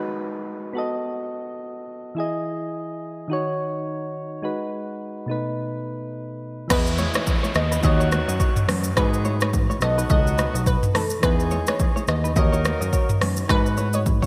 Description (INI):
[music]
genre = afrobeats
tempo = 106 BPM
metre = 4/4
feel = swing 58% on 16ths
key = G# minor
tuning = A4 = 440 Hz
[part]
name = soft electric-piano-like synth keys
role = accompaniment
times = 0.0-14.3 s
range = B2 to D#5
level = -31 LUFS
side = equal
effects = chorus
[part]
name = downlifter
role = sound effects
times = 0.0-2.2, 6.8-11.2 s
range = none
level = -38 LUFS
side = equal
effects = none
[part]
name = glassy wavetable pluck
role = melody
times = 6.7-14.0 s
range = A4 to D#5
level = -30 LUFS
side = equal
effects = chorus, delay
[part]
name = warm horn section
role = second line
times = 6.7-14.0 s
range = B2 to B4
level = -34 LUFS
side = equal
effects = none
[part]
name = direct-recorded clean electric guitar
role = riff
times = 6.7-14.3 s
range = D#4 to D#5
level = -35 LUFS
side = equal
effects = subtle chorus
[part]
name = bell-like tine electric piano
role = bass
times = 6.7-14.2 s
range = B1 to G#2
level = -26 LUFS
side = equal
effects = none
[part]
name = deep house drum kit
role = drums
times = 6.7-14.3 s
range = crash cymbal, hi-hat, kick drum, rim click, shaker, toms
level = -25 LUFS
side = equal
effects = gated reverb
[part]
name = congas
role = percussion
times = 6.7-14.3 s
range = none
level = -35 LUFS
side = equal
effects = none
[sound]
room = light reverb, digital ambience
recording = bright 1980s-style digital production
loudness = -23 LUFS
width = mono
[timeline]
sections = 0.0-6.7 A section; 6.7-14.3 B section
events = none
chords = 0.0 G#m7; 0.8 B7; 2.2 Emaj7; 3.3 D#m7; 4.4 G#m7; 5.3 B7; 6.7 Emaj7; 7.8 D#m7; 9.0 G#m7; 9.8 B7; 11.2 Emaj7; 12.4 D#m7; 13.5 G#m7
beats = 0.48 1.04 1.61 | 2.17 2.74 3.31 3.87 | 4.44 5.00 5.57 6.14 | 6.70 7.27 7.83 8.40 | 8.97 9.53 10.10 10.66 | 11.23 11.80 12.36 12.93 | 13.49 14.06